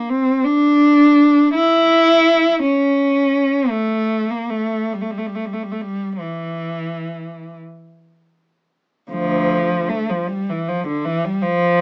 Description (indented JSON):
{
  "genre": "classical, free, expressive piece for unaccompanied cello",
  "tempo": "32-58 BPM (dotted quarters)",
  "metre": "6/8",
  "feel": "rubato",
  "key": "D minor",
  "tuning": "A4 = 442 Hz",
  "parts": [
    { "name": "dark cello", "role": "solo", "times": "0.0-11.8 s", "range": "D2 to E4", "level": "-18 LUFS", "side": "equal", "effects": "none" }
  ],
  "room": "moderate studio reverb, RT60 0.6 s",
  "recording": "small speaker sound",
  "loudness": "-17 LUFS",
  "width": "mono",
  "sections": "0.0-9.1 A section; 9.1-11.8 B section",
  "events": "none",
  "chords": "none"
}